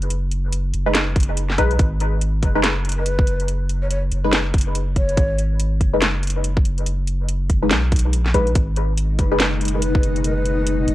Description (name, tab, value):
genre	deep dubstep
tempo	142 BPM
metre	4/4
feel	swing 60% on 16ths, half-time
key	G# minor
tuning	A4 = 440 Hz
part	saturated sub bass	bass	0.0-10.9 s	F#1 to B1	-21 LUFS	equal	transformer saturation
part	garage drum kit	drums	0.0-10.9 s	hi-hat, snare drum	-22 LUFS	equal	none
part	filtered dub chord stab	stabs	0.9-9.4 s	G#3 to B4	-24 LUFS	left 1 dB	phaser, analog chorus, dub echo
part	electronic kick drum	drums	1.2-10.0 s	none	-18 LUFS	equal	none
part	breathy mellow ney	melody	3.0-5.4, 9.7-10.8 s	B4 to C#5	-27 LUFS	left 1 dB	dub echo
part	granular cloud pad	sustained chords	9.1-10.9 s	B2 to D#4	-24 LUFS	left 2 dB	built-in reverb, vintage 12-bit sampler grit
room	little or no reverb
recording	dry, gritty hardware recording, cassette tape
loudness	-17 LUFS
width	side -15 dB against mid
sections	0.0-10.9 A section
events	none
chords	0.0 G#m